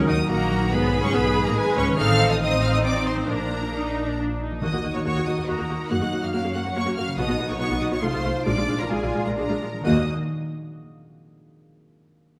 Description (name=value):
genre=classical, dramatic, fast romantic movement for symphony orchestra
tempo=124-144 BPM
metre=3/4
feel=rubato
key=Eb minor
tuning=A4 = 440 Hz
part: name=clear symphonic viola section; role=accompaniment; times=0.0-10.1 s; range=Ab3 to Gb4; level=-30 LUFS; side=equal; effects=none
part: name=concert harp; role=arpeggios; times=0.0-10.1 s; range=Gb2 to Bb5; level=-30 LUFS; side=equal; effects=none
part: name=rich chamber cello section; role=bass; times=0.0-10.1 s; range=Eb2 to Cb5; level=-31 LUFS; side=equal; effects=none
part: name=rich symphonic double bass section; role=bass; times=0.0-10.1 s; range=Ab1 to Gb2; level=-31 LUFS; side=equal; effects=none
part: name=timpani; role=percussion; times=0.0, 3.3-5.2, 9.8-10.1 s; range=Bb2 to Eb3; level=-40 LUFS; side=equal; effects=none
part: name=rich symphonic violin section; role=melody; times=0.1-10.1 s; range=Ab5 to Gb6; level=-34 LUFS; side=equal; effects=none
part: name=clear symphonic violin section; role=second line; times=0.1-10.1 s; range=Ab4 to Gb5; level=-33 LUFS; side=equal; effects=none
room=moderate scoring stage reverb, RT60 1.9 s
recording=none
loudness=-23 LUFS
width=mono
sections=0.0-9.8 A section; 9.8-11.2 B section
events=slowing down 6.5-9.8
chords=0.0 Ebm; 0.7 Abm/Cb; 2.0 F7/A; 3.3 Bb; 4.6 Ebm; 5.9 Gb; 7.2 B; 8.0 F7/C; 8.5 Bb7; 9.8 Ebm